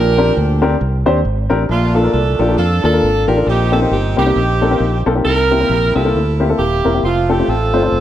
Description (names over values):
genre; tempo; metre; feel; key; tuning
uptempo gospel; 135 BPM; 4/4; swing 58% on 8ths; Bb major; A4 = 439 Hz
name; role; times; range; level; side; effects
bright saxophone section; melody; 0.0-8.0 s; A3 to Bb4; -17 LUFS; right 3 dB; slapback echo
warm upright piano; accompaniment; 0.0-8.0 s; Bb2 to C5; -16 LUFS; left 3 dB; none
fingered electric bass; bass; 0.0-8.0 s; Eb1 to F2; -17 LUFS; equal; none
room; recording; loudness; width
light reverb, small room ambience; none; -12 LUFS; side -11 dB against mid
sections
0.0-1.7 A section; 1.7-8.0 B section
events
none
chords
0.0 Bb69; 1.7 Bbmaj7; 3.5 Eb6; 5.2 C7; 7.0 F